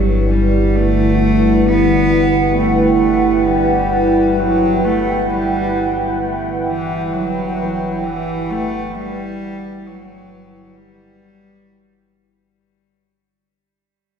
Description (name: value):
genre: dark ambient drone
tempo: 66 BPM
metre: 4/4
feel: straight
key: unclear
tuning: A4 = 440 Hz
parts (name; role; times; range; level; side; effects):
- clear cello; melody; 0.0-12.1 s; E3 to B3; -20 LUFS; equal; ping-pong delay
- dark analog pad; sustained chords; 0.0-12.6 s; E4 to G5; -16 LUFS; right 1 dB; chorus
- clear concert grand piano; arpeggios; 0.0-13.1 s; E3 to C#4; -34 LUFS; left 2 dB; none
- organ-like drone; drone; 0.0-12.7 s; G1; -20 LUFS; equal; ensemble chorus, built-in reverb
room: wet lush hall reverb, RT60 2.8 s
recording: dreamy mix soaked in reverb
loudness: -13 LUFS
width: side -7 dB against mid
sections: 0.0-12.6 A section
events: fade-out 2.9-12.6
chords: 0.0 Em